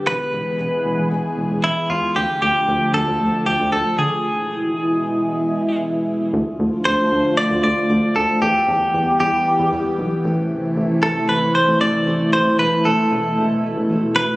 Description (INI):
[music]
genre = synth-pop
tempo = 115 BPM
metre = 4/4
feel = straight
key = unclear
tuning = A4 = 440 Hz
[part]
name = phased analog pad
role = sustained chords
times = 0.0-14.4 s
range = B2 to G#4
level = -20 LUFS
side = equal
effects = phaser, chorus
[part]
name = direct-recorded clean electric guitar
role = melody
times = 0.1-14.4 s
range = E4 to D5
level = -19 LUFS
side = equal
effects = none
[part]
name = rubbery square bass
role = bass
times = 0.1-14.3 s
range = E1 to D3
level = -24 LUFS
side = equal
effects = none
[sound]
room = moderate lush hall reverb, RT60 2.6 s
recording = recorded on a phone in the room, studio reverb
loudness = -16 LUFS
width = side -19 dB against mid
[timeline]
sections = 0.0-6.3 A section; 6.3-14.4 B section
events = stop 4.2-6.3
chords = 0.1 E; 2.2 Dm; 4.2 E; 6.3 Dm; 8.4 Em; 10.2 Am; 12.6 Esus4